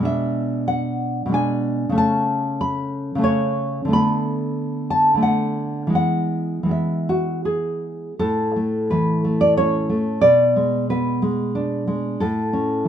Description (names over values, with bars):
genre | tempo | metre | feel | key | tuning
romantic piece for solo classical guitar | 78-99 BPM | 3/4 | rubato | A major | A4 = 440 Hz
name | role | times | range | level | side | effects
nylon-string guitar | solo | 0.0-12.9 s | A2 to B5 | -18 LUFS | equal | none
room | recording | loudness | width
moderate studio reverb, RT60 0.8 s | minimal, uncompressed stereo recording | -18 LUFS | side -9 dB against mid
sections
0.0-8.2 A section; 8.2-12.9 B section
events
none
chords
0.1 E7/B; 2.0 A/C#; 3.9 Bm7/D; 6.0 E; 8.2 A; 10.2 G#dim/B; 12.2 A